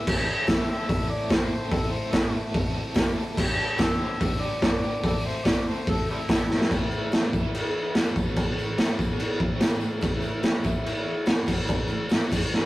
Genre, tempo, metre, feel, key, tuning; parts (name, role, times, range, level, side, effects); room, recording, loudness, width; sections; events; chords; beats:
garage rock duo or trio; 144 BPM; 4/4; straight; A minor; A4 = 440 Hz
overdriven harmonica; melody; 0.0-6.7 s; G3 to E5; -32 LUFS; left 1 dB
biting overdriven guitar; riff; 0.0-12.7 s; G2 to A4; -33 LUFS; equal; tremolo
raw garage drum kit; drums; 0.1-12.6 s; crash cymbal, hi-hat, kick drum, snare drum; -23 LUFS; equal
tambourine; percussion; 0.5-12.6 s; -48 LUFS; left 3 dB
light reverb; rough rehearsal-room recording, warm saturation; -23 LUFS; side -17 dB against mid
0.0-6.7 A section; 6.7-12.7 B section
drum fill 6.5
0.1 Am; 3.4 G; 5.0 Am; 6.7 A5; 7.3 E5; 7.9 F5; 8.2 B5; 8.6 A5; 9.0 B5; 9.4 Am; 10.7 E5; 11.3 F5; 11.5 B5; 11.9 A5
| 0.07 0.48 0.90 1.31 | 1.72 2.14 2.55 2.97 | 3.38 3.79 4.21 4.62 | 5.04 5.45 5.87 6.29 | 6.70 7.12 7.53 7.95 | 8.37 8.78 9.20 9.61 | 10.03 10.45 10.86 11.28 | 11.70 12.11 12.53